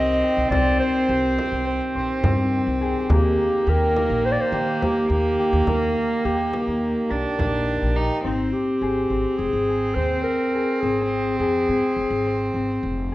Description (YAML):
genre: contemporary instrumental, chamber music in an uneven meter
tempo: 210 BPM (eighths)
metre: 9/8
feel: straight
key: Ab major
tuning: A4 = 439 Hz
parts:
  - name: mellow clarinet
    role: melody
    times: 0.0-13.1 s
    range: Eb4 to Eb5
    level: -24 LUFS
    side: equal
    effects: none
  - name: rich cello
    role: second line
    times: 0.0-13.1 s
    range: Bb3 to Eb4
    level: -26 LUFS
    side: right 3 dB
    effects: none
  - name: pedal harmonium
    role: sustained chords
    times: 0.0-8.2 s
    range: Eb3 to G4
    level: -30 LUFS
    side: equal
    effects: none
  - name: concert harp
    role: arpeggios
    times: 0.0-13.1 s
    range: Bb3 to C5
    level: -26 LUFS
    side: left 3 dB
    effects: none
  - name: upright bass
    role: bass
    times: 0.0-13.1 s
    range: F1 to Eb3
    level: -26 LUFS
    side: equal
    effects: none
  - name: frame drum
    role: percussion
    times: 0.5-8.1 s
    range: none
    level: -29 LUFS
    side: equal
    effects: none
room: wet recital hall reverb, RT60 1.4 s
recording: worn, warbling old tape, cassette tape, warbly pitch drift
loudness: -19 LUFS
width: side -16 dB against mid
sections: 0.0-8.3 A section; 8.3-13.1 B section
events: none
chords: 0.0 Cm; 8.3 Ab